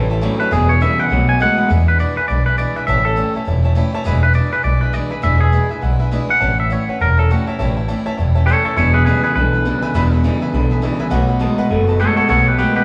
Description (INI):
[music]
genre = rockabilly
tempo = 204 BPM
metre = 4/4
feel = swing 60% on 8ths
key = E mixolydian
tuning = A4 = 440 Hz
[part]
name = clear upright piano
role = accompaniment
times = 0.0-12.8 s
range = B4 to B5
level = -29 LUFS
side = equal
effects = none
[part]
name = picked steel-string acoustic guitar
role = accompaniment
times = 0.0-12.8 s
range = E2 to F#4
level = -27 LUFS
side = equal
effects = none
[part]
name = electric guitar through a small old amp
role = riff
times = 0.0-1.7, 8.8-12.8 s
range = E2 to A3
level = -22 LUFS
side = equal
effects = none
[part]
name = upright bass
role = bass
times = 0.0-12.8 s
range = E1 to E2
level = -19 LUFS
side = equal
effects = none
[part]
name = twangy electric guitar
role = melody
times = 0.4-12.8 s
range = E4 to G#5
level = -20 LUFS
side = equal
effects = spring reverb
[sound]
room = moderate large studio reverb, RT60 1.0 s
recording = band playing live in one room, studio ambience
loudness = -16 LUFS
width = mono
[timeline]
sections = 0.0-1.7 A section; 1.7-12.8 B section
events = clean electric guitar solo 0.0-1.7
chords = 0.0 A7; 0.5 E7; 1.1 B7; 1.7 E7; 2.9 A7; 4.1 E7; 6.4 A7; 8.8 E7; 11.1 B7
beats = 0.23 | 0.52 0.81 1.11 1.41 | 1.70 2.00 2.29 2.58 | 2.88 3.17 3.47 3.77 | 4.06 4.35 4.65 4.94 | 5.24 5.53 5.83 6.12 | 6.42 6.71 7.00 7.30 | 7.59 7.89 8.18 8.47 | 8.77 9.06 9.36 9.65 | 9.95 10.24 10.53 10.83 | 11.12 11.41 11.71 12.00 | 12.30 12.59